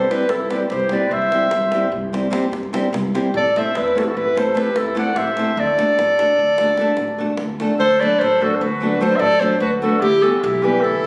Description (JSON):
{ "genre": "balkan folk, Balkan wedding band", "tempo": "296 BPM (eighths)", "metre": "11/8", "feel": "straight", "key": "D mixolydian", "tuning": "A4 = 440 Hz", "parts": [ { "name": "mellow clarinet", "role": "melody", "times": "0.0-11.1 s", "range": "G4 to F#5", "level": "-20 LUFS", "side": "equal", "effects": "none" }, { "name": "warm trumpet", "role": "second line", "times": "0.0-11.1 s", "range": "E4 to D5", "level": "-28 LUFS", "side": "equal", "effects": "none" }, { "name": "nylon-string guitar", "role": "accompaniment", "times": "0.0-11.1 s", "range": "E3 to A4", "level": "-25 LUFS", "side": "equal", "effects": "none" }, { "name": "upright bass", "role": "bass", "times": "0.0-11.1 s", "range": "A1 to G2", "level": "-30 LUFS", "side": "equal", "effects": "none" }, { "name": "davul", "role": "percussion", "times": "0.1-7.8 s", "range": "none", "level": "-34 LUFS", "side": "equal", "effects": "none" } ], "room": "moderate recital hall reverb, RT60 1.5 s", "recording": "recorded on a phone in the room, club reverb, compression", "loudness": "-18 LUFS", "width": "mono", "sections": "0.0-7.8 A section; 7.8-11.1 B section", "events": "none", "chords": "0.0 C; 3.3 Am; 5.6 D; 10.0 Em" }